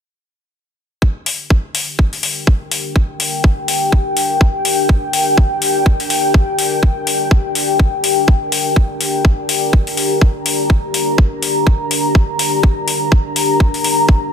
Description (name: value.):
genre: bass house.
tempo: 124 BPM.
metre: 4/4.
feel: swing 58% on 16ths.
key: G minor.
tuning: A4 = 439 Hz.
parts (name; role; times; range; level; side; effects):
electronic kick drum; drums; 1.0-14.2 s; none; -11 LUFS; equal; studio reverb.
deep dark ambient pad; texture; 2.4-14.3 s; D4 to Bb5; -17 LUFS; left 2 dB; chorus, built-in reverb, sidechain pumping.
electronic hi-hat; drums; 1.3-14.0 s; none; -18 LUFS; left 4 dB; studio reverb.
room: light reverb.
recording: dense, heavily limited modern master.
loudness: -13 LUFS.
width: side -8 dB against mid.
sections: 1.0-14.3 A section.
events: none.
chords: 1.0 Gm.